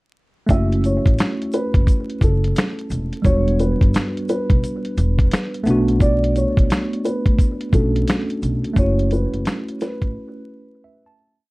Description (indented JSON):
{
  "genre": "lo-fi hip hop",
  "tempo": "87 BPM",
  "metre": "4/4",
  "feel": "swing 63% on 16ths",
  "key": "F# phrygian",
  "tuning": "A4 = 439 Hz",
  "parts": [
    { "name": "felt-muted upright piano", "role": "melody", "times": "0.5-11.0 s", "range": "A4 to E5", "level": "-26 LUFS", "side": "equal", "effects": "low-pass filter, analog delay" },
    { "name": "mellow tine electric piano", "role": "accompaniment", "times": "0.5-11.5 s", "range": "G3 to A5", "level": "-23 LUFS", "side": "right 1 dB", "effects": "medium stereo tremolo, low-pass filter" },
    { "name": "upright bass", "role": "bass", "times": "0.5-10.1 s", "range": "E1 to D2", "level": "-20 LUFS", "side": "equal", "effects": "none" },
    { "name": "dusty soul sampler-style drum kit", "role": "drums", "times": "0.5-10.1 s", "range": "finger snaps, hi-hat, kick drum, snare drum", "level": "-17 LUFS", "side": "equal", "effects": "none" },
    { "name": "tube shaker", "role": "percussion", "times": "0.5-10.0 s", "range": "none", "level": "-47 LUFS", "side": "left 3 dB", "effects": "none" }
  ],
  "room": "light reverb",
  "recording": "dark, warm production, vinyl crackle",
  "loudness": "-16 LUFS",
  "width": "side -22 dB against mid",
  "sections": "0.5-11.5 A section",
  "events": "fade-out 8.8-11.5; break 10.1-11.5; tine electric piano fill 10.5-11.5",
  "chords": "0.5 F#m7; 3.2 Em7; 5.7 Bm7; 8.8 F#m7",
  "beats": "| 0.49 1.18 1.87 2.56 | 3.25 3.94 4.63 5.32 | 6.00 6.70 7.38 8.07 | 8.76 9.45 10.14 10.83"
}